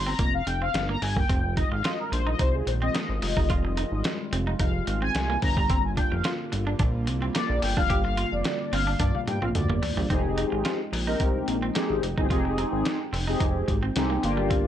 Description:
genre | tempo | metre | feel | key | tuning
early-eighties boogie funk | 109 BPM | 4/4 | straight | F dorian | A4 = 440 Hz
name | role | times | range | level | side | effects
mellow synth brass | accompaniment | 0.0-14.7 s | Bb3 to Bb5 | -29 LUFS | left 2 dB | chorus, phaser
electric guitar at the edge of break-up | riff | 0.0-14.6 s | G3 to G4 | -34 LUFS | right 4 dB | lush chorus
chorused synth bass | bass | 0.0-14.7 s | F1 to G2 | -28 LUFS | equal | none
lo-fi sampler-style drum kit | drums | 0.2-14.6 s | hi-hat, kick drum, snare drum, toms | -28 LUFS | equal | none
chorused pulse-width pad | sustained chords | 1.3-14.7 s | D3 to G5 | -34 LUFS | equal | none
room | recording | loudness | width
digital ambience | none | -23 LUFS | side -10 dB against mid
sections
0.0-10.1 A section; 10.1-14.7 B section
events
analog polysynth solo 0.0-10.1; drum fill 9.0-10.1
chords
0.0 Gm7; 1.3 Fm9; 5.4 Gm7; 10.1 Fm9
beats
0.20 0.75 | 1.30 1.85 2.40 2.95 | 3.50 4.05 4.60 5.15 | 5.70 6.25 6.80 7.35 | 7.90 8.45 9.00 9.55 | 10.10 10.65 11.21 11.76 | 12.31 12.86 13.41 13.96 | 14.51

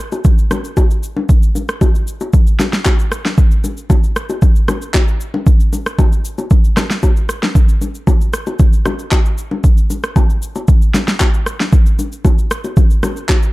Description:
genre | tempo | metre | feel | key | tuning
amapiano | 115 BPM | 4/4 | straight | none | none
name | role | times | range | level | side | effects
deep house drum kit | drums | 0.1-13.5 s | handclaps, kick drum, rim click, shaker, snare drum | -12 LUFS | equal | none
bongos and congas | percussion | 0.1-13.4 s | none | -20 LUFS | left 1 dB | none
room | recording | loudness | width
little or no reverb | dark, warm production, faint mains hum | -12 LUFS | side -19 dB against mid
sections
0.0-13.5 A section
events
none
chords
none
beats
0.25 0.77 | 1.29 1.81 2.33 2.86 | 3.38 3.90 4.42 4.94 | 5.47 5.99 6.51 7.03 | 7.55 8.07 8.60 9.12 | 9.64 10.16 10.68 11.21 | 11.73 12.25 12.77 13.29

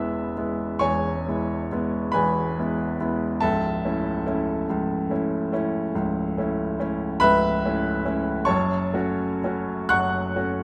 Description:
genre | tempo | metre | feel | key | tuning
classical, romantic nocturne for solo piano | 39-49 BPM (dotted quarters) | 12/8 | rubato | unclear | A4 = 440 Hz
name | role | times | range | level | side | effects
clear baby grand piano | solo | 0.0-10.6 s | C#1 to F#6 | -24 LUFS | equal | none
room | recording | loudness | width
moderate large studio reverb, RT60 1.4 s | close, detailed microphones | -25 LUFS | mono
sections
0.0-10.6 A section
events
none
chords
0.0 E; 3.4 A/C#; 8.5 F#m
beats
0.82 2.13 | 3.42 4.69 5.97 7.23 | 8.48 9.93

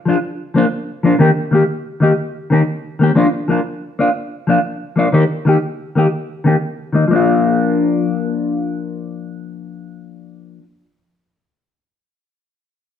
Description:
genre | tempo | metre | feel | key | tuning
highlife | 122 BPM (dotted quarters) | 12/8 | straight | Bb major | A4 = 440 Hz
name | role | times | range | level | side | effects
mellow electric guitar | solo | 0.1-10.7 s | Eb3 to G4 | -14 LUFS | left 2 dB | phaser
room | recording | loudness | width
wet stone room reverb, RT60 1.1 s | band playing live in one room | -14 LUFS | side -9 dB against mid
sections
0.0-7.1 A section; 7.1-11.0 B section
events
none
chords
0.0 Bb; 1.2 Eb; 3.2 Bb; 5.1 Eb; 7.1 Bb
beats
0.21 0.70 | 1.20 1.69 2.18 2.67 | 3.16 3.65 4.15 4.64 | 5.13 5.62 6.12 6.61 | 7.10 7.59 8.09 8.58 | 9.07 9.57 10.06 10.55

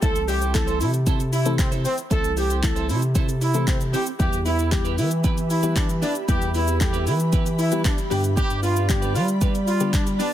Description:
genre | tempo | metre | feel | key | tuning
dance-pop | 115 BPM | 4/4 | straight | unclear | A4 = 439 Hz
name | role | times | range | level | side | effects
warm horn section | melody | 0.0-10.3 s | C4 to A4 | -26 LUFS | equal | sidechain pumping, ping-pong delay
soft round pluck | accompaniment | 0.0-10.3 s | D3 to A4 | -30 LUFS | left 7 dB | chorus, sidechain pumping
twelve-string electric guitar | riff | 0.0-10.3 s | B3 to C5 | -32 LUFS | right 8 dB | lush chorus
saturated sub bass | bass | 0.0-10.2 s | C2 to G3 | -24 LUFS | equal | sidechain pumping
deep house drum kit | drums | 0.0-10.3 s | handclaps, hi-hat, kick drum, shaker | -24 LUFS | equal | none
ethereal airy pad | sustained chords | 4.9-10.3 s | G4 to B5 | -32 LUFS | right 2 dB | ensemble chorus, built-in reverb, sidechain pumping
room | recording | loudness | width
digital ambience | dense, heavily limited modern master | -19 LUFS | side -12 dB against mid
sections
0.0-10.3 A section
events
none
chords
0.0 Am/C; 4.2 Em; 8.1 G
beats
| 0.02 0.55 1.07 1.59 | 2.11 2.63 3.15 3.68 | 4.20 4.72 5.24 5.76 | 6.29 6.81 7.33 7.85 | 8.37 8.89 9.42 9.94

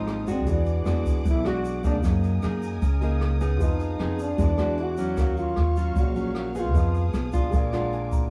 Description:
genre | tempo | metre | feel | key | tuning
bossa nova | 153 BPM | 4/4 | straight | Eb minor | A4 = 440 Hz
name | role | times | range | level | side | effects
mellow trombone | melody | 0.0-7.1 s | C4 to F#4 | -31 LUFS | equal | none
nylon-string guitar | accompaniment | 0.0-8.3 s | Ab2 to G#4 | -32 LUFS | equal | none
warm baby grand piano | accompaniment | 0.0-8.3 s | Eb4 to Bb5 | -39 LUFS | equal | none
rich studio violin section | sustained chords | 0.0-8.3 s | G#4 to Eb6 | -46 LUFS | equal | none
upright bass | bass | 0.0-8.3 s | Ab1 to Gb2 | -28 LUFS | equal | none
jazz brush drum kit | drums | 0.1-8.2 s | hi-hat, kick drum, rim click | -29 LUFS | equal | none
tube shaker | percussion | 0.3-8.3 s | none | -57 LUFS | equal | none
room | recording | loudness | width
moderate studio reverb, RT60 0.7 s | heard from further back in the room | -25 LUFS | mono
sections
0.0-8.3 A section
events
trombone solo 0.0-8.3; grand piano fill 7.5-8.3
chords
0.5 E9; 2.0 Gb69; 3.6 Fm7b5; 4.4 E9; 5.2 Ebm9; 6.7 Fm7b5; 7.5 Bb7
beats
0.07 | 0.46 0.86 1.25 1.64 | 2.03 2.43 2.82 3.21 | 3.60 4.00 4.39 4.78 | 5.17 5.57 5.96 6.35 | 6.75 7.14 7.53 7.92

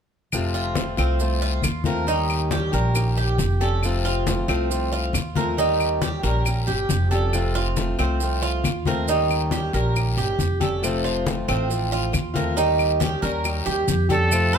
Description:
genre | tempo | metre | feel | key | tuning
latin, Cuban son and guajira | 137 BPM | 4/4 | straight | F major | A4 = 440 Hz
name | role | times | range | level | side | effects
picked acoustic archtop guitar | accompaniment | 0.3-14.6 s | C3 to G4 | -27 LUFS | left 3 dB | none
upright bass | bass | 0.3-14.6 s | F1 to F2 | -24 LUFS | equal | none
claves | percussion | 0.3-14.5 s | none | -31 LUFS | left 5 dB | none
congas | percussion | 0.3-14.6 s | none | -29 LUFS | left 4 dB | none
guiro | percussion | 0.3-14.6 s | none | -35 LUFS | left 8 dB | none
maracas | percussion | 0.3-14.6 s | none | -34 LUFS | right 7 dB | none
Cuban tres | arpeggios | 0.5-14.6 s | C4 to Bb4 | -26 LUFS | right 4 dB | none
breathy trumpet | melody | 14.1-14.6 s | A4 | -21 LUFS | equal | none
room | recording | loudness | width
little or no reverb | close, detailed microphones | -20 LUFS | side -7 dB against mid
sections
0.3-14.3 A section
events
none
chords
0.3 F; 2.1 Eb7; 3.8 F; 5.6 Eb7; 7.3 F; 9.1 Eb7; 10.8 F; 12.6 Eb7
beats
| 0.33 0.76 1.20 1.64 | 2.08 2.51 2.95 3.39 | 3.83 4.27 4.70 5.14 | 5.58 6.02 6.46 6.89 | 7.33 7.77 8.21 8.64 | 9.08 9.52 9.96 10.39 | 10.83 11.27 11.70 12.14 | 12.58 13.01 13.45 13.88 | 14.32

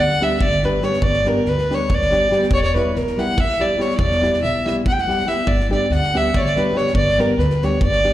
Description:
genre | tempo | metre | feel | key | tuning
balkan folk, Balkan wedding band | 284 BPM (eighths) | 7/8 | straight | unclear | A4 = 441 Hz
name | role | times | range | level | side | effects
dark fiddle | melody | 0.0-8.1 s | A#4 to G5 | -19 LUFS | equal | slapback echo
upright bass | bass | 0.0-8.1 s | E1 to D2 | -22 LUFS | equal | none
loose indie drum kit | percussion | 0.1-8.1 s | kick drum, snare drum | -24 LUFS | equal | none
nylon-string guitar | accompaniment | 0.2-8.1 s | G3 to G4 | -23 LUFS | left 1 dB | slapback echo
room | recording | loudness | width
light reverb, studio reverb | live gig heard through the venue's PA, recital hall reverb | -16 LUFS | side -13 dB against mid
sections
0.0-8.1 A section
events
none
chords
0.0 G; 2.5 Em; 5.5 G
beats
0.17 0.38 0.59 0.80 | 1.02 1.23 1.44 1.65 1.86 2.08 2.29 | 2.50 2.71 2.92 3.14 3.35 3.56 3.77 | 3.98 4.19 4.41 4.62 4.83 5.04 5.25 | 5.46 5.67 5.88 6.09 6.30 6.52 6.73 | 6.94 7.15 7.36 7.57 7.78 7.99

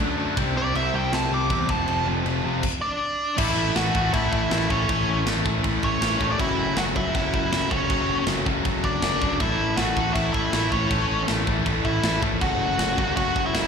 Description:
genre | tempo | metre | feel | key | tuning
punk rock | 160 BPM | 4/4 | straight | A major | A4 = 439 Hz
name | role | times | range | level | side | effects
biting overdriven guitar | riff | 0.0-13.7 s | C3 to A4 | -29 LUFS | right 14 dB | slapback echo
crunchy overdriven guitar | riff | 0.0-13.7 s | F2 to D4 | -27 LUFS | left 12 dB | slapback echo
growling picked electric bass | bass | 0.0-13.7 s | F1 to F#2 | -28 LUFS | right 1 dB | overdrive
tight metal drum kit | drums | 0.0-13.6 s | crash cymbal, kick drum, snare drum | -28 LUFS | right 1 dB | none
nasal lead guitar with a parked wah | melody | 0.6-13.7 s | C#4 to D6 | -26 LUFS | right 1 dB | overdrive, slapback echo
room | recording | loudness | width
light reverb | live gig heard through the venue's PA, recital hall reverb | -21 LUFS | side -6 dB against mid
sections
0.0-3.4 A section; 3.4-13.7 B section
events
half time 0.0-3.4; lead electric guitar solo 0.0-3.4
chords
0.4 C; 1.7 F; 2.6 N.C.; 3.4 A; 6.4 F#m; 9.4 A; 12.4 F#m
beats
| 0.37 0.75 1.12 1.50 | 1.88 2.26 2.63 3.01 | 3.39 3.76 4.14 4.51 | 4.89 5.27 5.64 6.02 | 6.39 6.77 7.15 7.52 | 7.90 8.28 8.65 9.03 | 9.40 9.78 10.15 10.53 | 10.91 11.28 11.66 12.04 | 12.41 12.79 13.16 13.54

